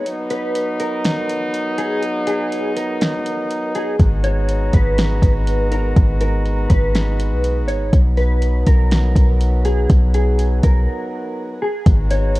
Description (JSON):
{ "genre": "hip hop, atmospheric cloud-rap", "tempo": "122 BPM", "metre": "4/4", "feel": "half-time", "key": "unclear", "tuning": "A4 = 437 Hz", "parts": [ { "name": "mellow electric guitar", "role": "melody", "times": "0.0-12.4 s", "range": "G#4 to C#5", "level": "-24 LUFS", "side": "equal", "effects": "analog chorus, low-pass filter, tape echo" }, { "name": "mellow brass ensemble", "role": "sustained chords", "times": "0.0-12.4 s", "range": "F#3 to A#5", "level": "-24 LUFS", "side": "equal", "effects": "sidechain pumping" }, { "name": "smooth R&B drum kit", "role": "drums", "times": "0.1-12.4 s", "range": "hi-hat, kick drum, snare drum", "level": "-16 LUFS", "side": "equal", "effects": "none" }, { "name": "warm 808-style bass", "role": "bass", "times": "4.0-12.4 s", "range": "G#1 to B1", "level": "-16 LUFS", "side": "equal", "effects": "none" } ], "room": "digital ambience", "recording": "worn, warbling old tape, cassette tape, warbly pitch drift", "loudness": "-15 LUFS", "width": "side -19 dB against mid", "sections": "0.0-11.9 A section", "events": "break 0.0-4.0, 10.9-11.9", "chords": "0.1 Bmaj7; 4.0 G#m7; 7.9 Bmaj7; 11.9 G#m7" }